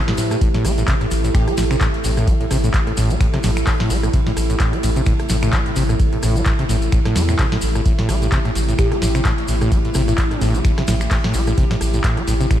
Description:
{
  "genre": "acid house",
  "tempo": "129 BPM",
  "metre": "4/4",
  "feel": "swing 56% on 16ths",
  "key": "A minor",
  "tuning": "A4 = 445 Hz",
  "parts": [
    { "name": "warbly tape-like pad", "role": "sustained chords", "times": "0.0-12.6 s", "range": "C3 to B4", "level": "-24 LUFS", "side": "right 1 dB", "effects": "chorus, built-in reverb, sidechain pumping" },
    { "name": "acid bass, saw", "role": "riff", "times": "0.0-12.6 s", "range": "A2 to A3", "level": "-22 LUFS", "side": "equal", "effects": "tube saturation, sidechain pumping, ping-pong delay" },
    { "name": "soft brush drum kit", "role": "drums", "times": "0.0-12.6 s", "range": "hi-hat, ride cymbal, snare drum", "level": "-35 LUFS", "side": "right 2 dB", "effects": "high-pass filter on cymbals, studio reverb, high-pass filter on hats, high-pass filter on snare, high-pass filter on room" },
    { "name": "booming analog drum machine", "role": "drums", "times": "0.1-12.6 s", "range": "finger snaps, handclaps, hi-hat, rim click, snare drum", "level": "-25 LUFS", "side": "equal", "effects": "studio reverb" },
    { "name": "round analog bass", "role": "bass", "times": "0.2-12.5 s", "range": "A1 to A2", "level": "-20 LUFS", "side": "equal", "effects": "sidechain pumping" },
    { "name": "maracas", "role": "percussion", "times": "0.2-12.6 s", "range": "none", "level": "-33 LUFS", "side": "left 2 dB", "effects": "none" },
    { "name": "electronic kick drum", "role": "drums", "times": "0.4-12.6 s", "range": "none", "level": "-19 LUFS", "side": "equal", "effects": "studio reverb" },
    { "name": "plucky unison lead", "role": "melody", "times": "1.3-1.5, 8.8-10.4 s", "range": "E4 to G4", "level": "-28 LUFS", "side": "equal", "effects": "wide subtle chorus, ping-pong delay" }
  ],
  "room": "light reverb, small room ambience",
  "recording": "none",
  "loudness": "-15 LUFS",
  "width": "side -11 dB against mid",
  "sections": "0.0-12.6 A section",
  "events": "none",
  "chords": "0.0 Am"
}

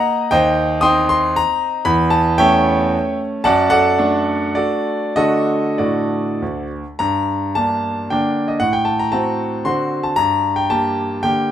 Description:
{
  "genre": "classical, romantic triple-time dance for piano with dotted rhythms",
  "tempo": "91-125 BPM",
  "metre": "3/4",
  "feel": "rubato",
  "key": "G minor",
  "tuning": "A4 = 440 Hz",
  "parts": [
    { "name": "clear concert grand piano", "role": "solo", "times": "0.0-11.5 s", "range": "D2 to Eb6", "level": "-15 LUFS", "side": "equal", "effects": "none" }
  ],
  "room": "moderate large studio reverb, RT60 1.1 s",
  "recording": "none",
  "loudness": "-15 LUFS",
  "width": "side -10 dB against mid",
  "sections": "0.0-7.0 A section; 7.0-11.5 B section",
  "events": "none",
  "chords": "0.3 Cm/Eb; 1.9 A7/E; 3.5 D/F#; 5.2 D; 7.0 Gm; 8.6 D7/A; 10.2 Gm"
}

